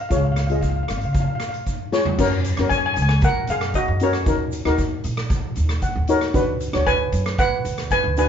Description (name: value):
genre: calypso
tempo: 115 BPM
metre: 4/4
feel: straight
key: F# major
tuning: A4 = 442 Hz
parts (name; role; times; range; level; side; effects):
- steel pan; melody; 0.0-8.3 s; F#4 to G#5; -23 LUFS; equal; none
- steel pan; accompaniment; 0.1-8.3 s; C#4 to F#5; -22 LUFS; left 3 dB; none
- upright bass; bass; 0.1-8.3 s; G#1 to C#3; -23 LUFS; equal; none
- street-band drum kit; drums; 0.1-8.3 s; crash cymbal, hi-hat, kick drum, rim click, snare drum, toms; -25 LUFS; right 1 dB; none
- tube shaker; percussion; 0.1-8.3 s; none; -44 LUFS; right 6 dB; none
room: moderate studio reverb, RT60 0.5 s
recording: band playing live in one room, nothing above 7.5 kHz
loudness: -18 LUFS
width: side -8 dB against mid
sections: 0.0-2.2 A section; 2.2-8.3 B section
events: drum fill 1.9; steel pan fill 5.6-6.3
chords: 0.1 C#; 2.2 F#add9; 4.3 D#m7; 6.3 Bmadd9/D